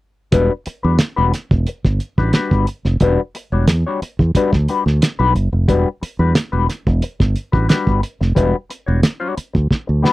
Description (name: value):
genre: funk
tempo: 90 BPM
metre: 4/4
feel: straight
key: E dorian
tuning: A4 = 441 Hz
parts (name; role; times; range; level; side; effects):
- mellow electric guitar; accompaniment; 0.3-10.1 s; G3 to C#5; -18 LUFS; left 4 dB; wah
- fingered electric bass; bass; 0.3-10.0 s; E1 to E2; -16 LUFS; right 1 dB; none
- cloth-damped thuddy drum kit; drums; 0.3-10.1 s; hi-hat, kick drum, snare drum; -16 LUFS; right 1 dB; none
room: little or no reverb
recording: dry, close 1970s-style studio recording, faint mains hum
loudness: -15 LUFS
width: side -18 dB against mid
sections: 0.3-10.1 A section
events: drum fill 9.7-10.1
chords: 0.3 Em9